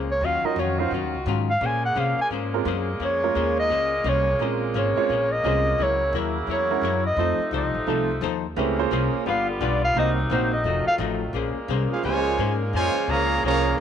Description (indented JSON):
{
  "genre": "jazz, big band swing",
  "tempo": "173 BPM",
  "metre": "4/4",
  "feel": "swing 63% on 8ths",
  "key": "Bb minor",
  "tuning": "A4 = 440 Hz",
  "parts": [
    { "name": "archtop guitar, miked and amplified", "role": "accompaniment", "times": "0.0-13.7 s", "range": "C3 to Db5", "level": "-30 LUFS", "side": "left 13 dB", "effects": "none" },
    { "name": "mellow saxophone section", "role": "sustained chords", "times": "0.0-13.8 s", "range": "Bb2 to Gb4", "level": "-30 LUFS", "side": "equal", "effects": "none" },
    { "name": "upright bass", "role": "bass", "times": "0.0-13.8 s", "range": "F1 to C3", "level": "-28 LUFS", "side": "equal", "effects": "none" },
    { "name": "warm clarinet", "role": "melody", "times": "0.1-11.0 s", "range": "A4 to Ab5", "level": "-24 LUFS", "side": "equal", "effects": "none" },
    { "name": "warm grand piano", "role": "accompaniment", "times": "0.4-10.5 s", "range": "Gb3 to Db5", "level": "-27 LUFS", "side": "right 12 dB", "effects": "none" },
    { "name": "bright trumpet section", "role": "melody", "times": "11.9-13.8 s", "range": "Db4 to Bb5", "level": "-24 LUFS", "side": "right 1 dB", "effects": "none" },
    { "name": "dark trombone section", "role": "second line", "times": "11.9-13.8 s", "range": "Db3 to F4", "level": "-27 LUFS", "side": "right 12 dB", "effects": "none" }
  ],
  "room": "light reverb, small room ambience",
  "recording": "1960s-style stereo with parts hard left and right",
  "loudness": "-21 LUFS",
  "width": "side -8 dB against mid",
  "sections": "0.0-11.3 A section; 11.3-13.8 B section",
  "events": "clarinet solo 0.0-11.3",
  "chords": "0.2 Ebm9; 1.6 Bbm9; 5.8 Gb7; 7.2 F7; 8.6 Bbm9; 9.3 G7; 10.0 Cm7b5; 10.7 F7b9; 11.3 Bbm9"
}